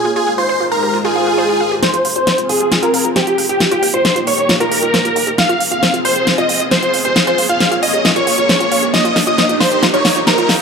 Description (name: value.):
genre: uplifting trance.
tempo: 135 BPM.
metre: 4/4.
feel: straight.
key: F minor.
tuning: A4 = 440 Hz.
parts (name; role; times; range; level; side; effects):
big supersaw lead; melody; 0.0-10.5 s; G4 to F5; -15 LUFS; equal; low-pass filter, tape echo.
felt-muted upright piano; second line; 0.0-1.7 s; F4; -29 LUFS; right 4 dB; none.
lush unison pad; sustained chords; 0.0-10.6 s; Ab3 to Db5; -22 LUFS; equal; chorus, phaser.
wide unison pluck; arpeggios; 0.0-10.6 s; F4 to F5; -22 LUFS; right 2 dB; tape echo.
swell and riser; sound effects; 1.1-10.6 s; none; -24 LUFS; right 1 dB; none.
dark concert grand piano; second line; 1.8-10.5 s; G4 to F5; -23 LUFS; left 1 dB; none.
big-room dance drum kit; drums; 1.8-10.6 s; hi-hat, snare drum; -16 LUFS; equal; none.
solid FM bass; bass; 1.9-10.6 s; Eb1 to Bb2; -33 LUFS; left 1 dB; none.
room: light reverb, digital ambience.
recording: high-pass filter.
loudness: -12 LUFS.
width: side -5 dB against mid.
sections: 0.0-1.8 A section; 1.8-10.6 B section.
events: filter sweep on synth arpeggio sound 0.0-1.8, 1.8-10.6; swell 1.1-1.8; build-up 1.8-10.6; drum fill 1.8-10.6; filter sweep on supersaw synth 1.8-10.6; riser 3.5-10.6.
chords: 0.0 Abadd9; 1.8 Fm; 3.6 Eb; 5.4 Fm; 7.2 Bbm7; 8.9 Eb.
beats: | 0.05 0.49 0.94 1.38 | 1.83 2.27 2.72 3.16 | 3.60 4.05 4.49 4.94 | 5.38 5.83 6.27 6.72 | 7.16 7.61 8.05 8.49 | 8.94 9.38 9.83 10.27.